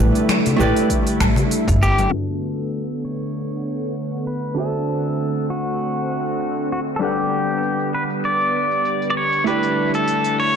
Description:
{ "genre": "sunset chillout", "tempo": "98 BPM", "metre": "4/4", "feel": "swing 54% on 16ths", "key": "D major", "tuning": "A4 = 438 Hz", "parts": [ { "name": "vintage hollow-body jazz guitar", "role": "accompaniment", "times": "0.0-10.6 s", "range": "D3 to F#5", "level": "-24 LUFS", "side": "moving between left 7 dB and right 5 dB", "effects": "auto-pan, low-pass filter, digital delay" }, { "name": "lush unison pad", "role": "sustained chords", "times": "0.0-10.6 s", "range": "D3 to F#5", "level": "-24 LUFS", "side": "equal", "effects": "chorus" }, { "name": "upright bass", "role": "bass", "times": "0.0-2.0 s", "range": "G1 to A2", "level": "-20 LUFS", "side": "equal", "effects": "transformer saturation" }, { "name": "deep house drum kit", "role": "drums", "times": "0.0-10.4 s", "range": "finger snaps, hi-hat, shaker, woodblock", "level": "-28 LUFS", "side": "right 1 dB", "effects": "soft clipping on snare" }, { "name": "congas", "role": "percussion", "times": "0.3-2.1 s", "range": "none", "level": "-25 LUFS", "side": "left 3 dB", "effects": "none" }, { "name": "electronic kick drum", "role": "drums", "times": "0.9-1.8 s", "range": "none", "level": "-23 LUFS", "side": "equal", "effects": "none" }, { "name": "pedal steel guitar", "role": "melody", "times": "1.8-10.6 s", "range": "F#4 to D5", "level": "-22 LUFS", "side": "left 1 dB", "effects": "ping-pong delay" } ], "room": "wet concert hall reverb, RT60 2.1 s", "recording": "blown-out, overdriven recording, overdrive, low-pass filter", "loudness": "-18 LUFS", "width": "side -7 dB against mid", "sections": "0.0-2.1 A section; 2.1-10.6 B section", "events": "filter sweep on hollow-body jazz guitar 2.1-10.6; filter sweep 2.1-10.6", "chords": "0.0 A7sus4; 2.1 D6; 4.6 D7; 7.0 Gmaj7; 9.5 A7sus4", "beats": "0.29 0.90 1.51 | 2.12 2.74 3.35 3.96 | 4.57 5.19 5.80 6.41 | 7.02 7.64 8.25 8.86 | 9.47 10.08" }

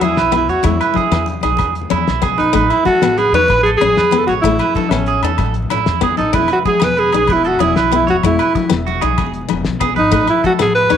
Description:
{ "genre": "highlife guitar band", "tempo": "126 BPM (dotted quarters)", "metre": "12/8", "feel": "straight", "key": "E major", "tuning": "A4 = 440 Hz", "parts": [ { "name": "breathy alto saxophone", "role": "melody", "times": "0.0-11.0 s", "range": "C#4 to B4", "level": "-15 LUFS", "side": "equal", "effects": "none" }, { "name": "picked steel-string acoustic guitar", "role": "accompaniment", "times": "0.0-11.0 s", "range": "G#3 to D#4", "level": "-22 LUFS", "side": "left 11 dB", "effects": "none" }, { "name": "electric guitar at the edge of break-up", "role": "arpeggios", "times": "0.0-11.0 s", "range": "E4 to C#5", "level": "-18 LUFS", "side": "right 11 dB", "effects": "none" }, { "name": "upright bass", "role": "bass", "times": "0.0-11.0 s", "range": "E1 to E2", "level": "-21 LUFS", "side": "equal", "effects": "none" }, { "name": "cloth-damped thuddy drum kit", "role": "drums", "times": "0.0-11.0 s", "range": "hi-hat, kick drum, snare drum", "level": "-20 LUFS", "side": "left 3 dB", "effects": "none" }, { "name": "agogo bells", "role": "percussion", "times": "0.0-11.0 s", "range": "none", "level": "-27 LUFS", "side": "left 11 dB", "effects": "none" }, { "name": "congas", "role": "percussion", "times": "0.0-11.0 s", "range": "none", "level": "-23 LUFS", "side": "left 11 dB", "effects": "none" } ], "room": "moderate spring reverb, RT60 1.6 s, studio ambience", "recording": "1960s-style stereo with parts hard left and right", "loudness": "-12 LUFS", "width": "side -8 dB against mid", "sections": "0.0-11.0 A section", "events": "none", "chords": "0.0 E; 2.5 Aadd9; 6.3 Emaj7; 10.1 Asus2", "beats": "0.17 | 0.65 1.12 1.60 2.07 | 2.55 3.02 3.50 3.97 | 4.44 4.92 5.39 5.87 | 6.34 6.82 7.29 7.76 | 8.24 8.71 9.18 9.66 | 10.13 10.60" }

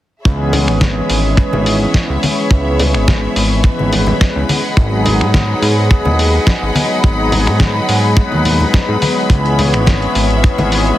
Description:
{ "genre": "nu-disco, nu disco", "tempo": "106 BPM", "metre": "4/4", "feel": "straight", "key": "C# minor", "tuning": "A4 = 444 Hz", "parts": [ { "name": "warm analog pad", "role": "accompaniment", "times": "0.2-11.0 s", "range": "E3 to B4", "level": "-17 LUFS", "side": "equal", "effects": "lush chorus, sidechain pumping, dub echo" }, { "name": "rich symphonic string section", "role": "sustained chords", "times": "0.2-11.0 s", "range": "G#4 to B5", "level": "-21 LUFS", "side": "left 2 dB", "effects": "sidechain pumping" }, { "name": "fat analog bass", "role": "bass", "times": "0.3-10.9 s", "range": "G#1 to G#2", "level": "-16 LUFS", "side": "equal", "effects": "none" }, { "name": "kick drum", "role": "drums", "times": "0.3-10.6 s", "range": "none", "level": "-11 LUFS", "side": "equal", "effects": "studio reverb" }, { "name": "dusty soul sampler-style drum kit", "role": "drums", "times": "0.5-11.0 s", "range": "finger snaps, hi-hat, snare drum", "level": "-20 LUFS", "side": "equal", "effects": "studio reverb" }, { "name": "congas", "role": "percussion", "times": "0.5-10.7 s", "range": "none", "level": "-21 LUFS", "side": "left 2 dB", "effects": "none" } ], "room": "light reverb, small room ambience", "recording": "heavily compressed radio sound", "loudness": "-11 LUFS", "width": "side -14 dB against mid", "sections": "0.2-11.0 A section", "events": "none", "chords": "0.2 C#m7; 4.5 G#m7; 9.3 C#m7", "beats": "| 0.25 0.81 1.38 1.95 | 2.51 3.08 3.64 4.21 | 4.78 5.34 5.91 6.47 | 7.04 7.61 8.17 8.74 | 9.30 9.87 10.44" }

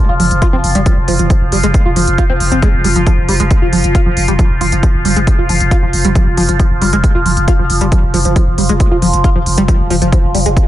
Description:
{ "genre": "driving peak-time techno", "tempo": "136 BPM", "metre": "4/4", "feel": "straight", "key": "unclear", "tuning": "A4 = 440 Hz", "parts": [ { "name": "overtone-sweeping drone", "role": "drone", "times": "0.0-10.7 s", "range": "F3 to F4", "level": "-18 LUFS", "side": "equal", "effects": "chorus, built-in reverb, phaser, sidechain pumping" }, { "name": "tight sequenced synth", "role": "riff", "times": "0.1-10.5 s", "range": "F3 to F4", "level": "-17 LUFS", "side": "equal", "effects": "chorus, tube saturation, sidechain pumping, tape echo" }, { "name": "growling 808-style bass", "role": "bass", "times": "0.1-10.6 s", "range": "F1", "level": "-17 LUFS", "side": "equal", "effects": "sidechain pumping, low-pass filter" }, { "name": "electronic hi-hat", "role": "drums", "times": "0.2-10.7 s", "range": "none", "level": "-21 LUFS", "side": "right 1 dB", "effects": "none" }, { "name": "electronic kick drum", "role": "drums", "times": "0.4-10.7 s", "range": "none", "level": "-12 LUFS", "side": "equal", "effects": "none" } ], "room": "digital ambience", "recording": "nothing above 11.0 kHz", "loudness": "-10 LUFS", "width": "side -13 dB against mid", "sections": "0.0-10.7 A section", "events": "none", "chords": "0.0 F5", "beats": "0.42 0.86 | 1.30 1.74 2.18 2.62 | 3.07 3.51 3.95 4.39 | 4.83 5.27 5.71 6.15 | 6.59 7.04 7.48 7.92 | 8.36 8.80 9.24 9.68 | 10.12 10.57" }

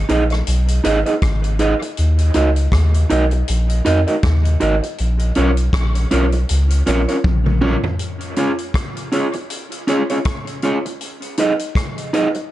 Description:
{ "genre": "dub reggae", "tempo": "80 BPM", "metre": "4/4", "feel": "swing 59% on 16ths", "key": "unclear", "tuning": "A4 = 441 Hz", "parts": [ { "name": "soft dub sub bass", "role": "bass", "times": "0.0-7.8 s", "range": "Ab1 to F2", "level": "-16 LUFS", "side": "equal", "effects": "none" }, { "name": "electric guitar at the edge of break-up", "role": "accompaniment", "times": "0.1-12.4 s", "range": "Db4 to Eb5", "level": "-19 LUFS", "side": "right 2 dB", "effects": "dub echo" }, { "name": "vintage drum kit", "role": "drums", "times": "0.1-12.5 s", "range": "hi-hat, kick drum, rim click, toms", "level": "-23 LUFS", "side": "equal", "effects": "none" } ], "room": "small room ambience", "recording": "dark, warm production, nothing above 10.7 kHz", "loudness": "-15 LUFS", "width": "side -14 dB against mid", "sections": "0.0-8.0 A section; 8.0-12.5 B section", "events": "drum fill 7.2-8.0", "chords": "0.0 Abm; 2.0 Ebm; 5.0 Bbm; 8.0 Db; 11.0 Abm", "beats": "0.46 1.22 | 1.97 2.72 3.47 4.23 | 4.98 5.73 6.49 7.24 | 7.99 8.74 9.50 10.25 | 11.00 11.76" }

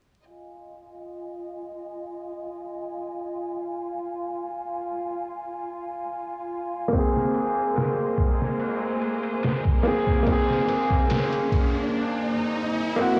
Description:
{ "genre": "trip hop", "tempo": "72 BPM", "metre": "4/4", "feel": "straight", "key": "F minor", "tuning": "A4 = 437 Hz", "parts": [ { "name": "rich studio violin section", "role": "sustained chords", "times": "0.3-11.9 s", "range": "F4 to Ab5", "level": "-36 LUFS", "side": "equal", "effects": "none" }, { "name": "clear upright piano", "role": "accompaniment", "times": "6.9-13.2 s", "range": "Bb3 to Ab4", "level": "-26 LUFS", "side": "equal", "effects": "harmonic tremolo, tape echo" }, { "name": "trip hop sampler-style drum kit", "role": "drums", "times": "6.9-11.7 s", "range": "kick drum, ride cymbal, snare drum", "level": "-28 LUFS", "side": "equal", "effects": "vintage 12-bit sampler grit" }, { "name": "riser", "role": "sound effects", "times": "8.3-13.2 s", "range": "none", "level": "-35 LUFS", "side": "equal", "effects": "none" } ], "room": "light reverb", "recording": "blown-out, overdriven recording, vinyl crackle, overdrive, low-pass filter, small room ambience", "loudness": "-26 LUFS", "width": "mono", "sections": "0.3-13.2 A section", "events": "filter sweep 0.3-13.2; riser 8.3-13.2", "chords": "0.3 Fm7; 6.9 Abadd9", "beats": "| 0.27 1.10 1.93 2.77 | 3.60 4.43 5.27 6.10 | 6.93 7.77 8.60 9.43 | 10.27 11.10 11.93 12.77" }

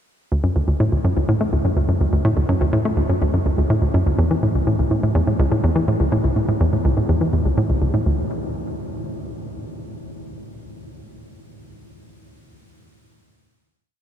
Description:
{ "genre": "ambient", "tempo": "124 BPM", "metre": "4/4", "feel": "straight", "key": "D major", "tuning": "A4 = 440 Hz", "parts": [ { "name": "hollow square pluck", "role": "solo", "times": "0.3-8.3 s", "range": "C#2 to A3", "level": "-18 LUFS", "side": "equal", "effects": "chorus, vintage 12-bit sampler grit, ping-pong delay" } ], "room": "wet huge ambient reverb, RT60 8.3 s", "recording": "dark, warm production", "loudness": "-17 LUFS", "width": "side -9 dB against mid", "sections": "0.3-8.1 A section; 8.1-11.9 final chord", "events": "none", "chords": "none", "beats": "| 0.32 0.80 1.28 1.77 | 2.25 2.73 3.22 3.70 | 4.19 4.67 5.16 5.64 | 6.12 6.61 7.09 7.57 | 8.06" }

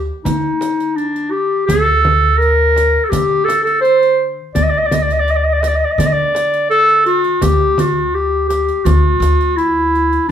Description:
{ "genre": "Arabic maqam ensemble", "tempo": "84 BPM", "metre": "4/4", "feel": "straight", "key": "D maqam hijaz", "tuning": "A4 = 440 Hz", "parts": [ { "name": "upright bass", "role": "bass", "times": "0.0-10.3 s", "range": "D2 to D3", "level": "-18 LUFS", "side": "equal", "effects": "none" }, { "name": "mellow clarinet", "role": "melody", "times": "0.2-10.3 s", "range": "D4 to Eb5+29c", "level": "-13 LUFS", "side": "equal", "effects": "none" }, { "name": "frame drum", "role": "percussion", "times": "0.3-9.4 s", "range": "none", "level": "-22 LUFS", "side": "right 1 dB", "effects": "none" }, { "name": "riq", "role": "percussion", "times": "0.3-10.2 s", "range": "none", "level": "-27 LUFS", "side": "right 4 dB", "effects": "none" } ], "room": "wet large studio reverb, RT60 0.9 s", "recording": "band playing live in one room", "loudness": "-12 LUFS", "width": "side -9 dB against mid", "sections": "0.0-7.4 A section; 7.4-10.3 B section", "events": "none", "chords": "none", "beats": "0.26 0.98 | 1.69 2.41 3.13 3.84 | 4.56 5.28 5.99 6.71 | 7.42 8.14 8.86 9.58 | 10.29" }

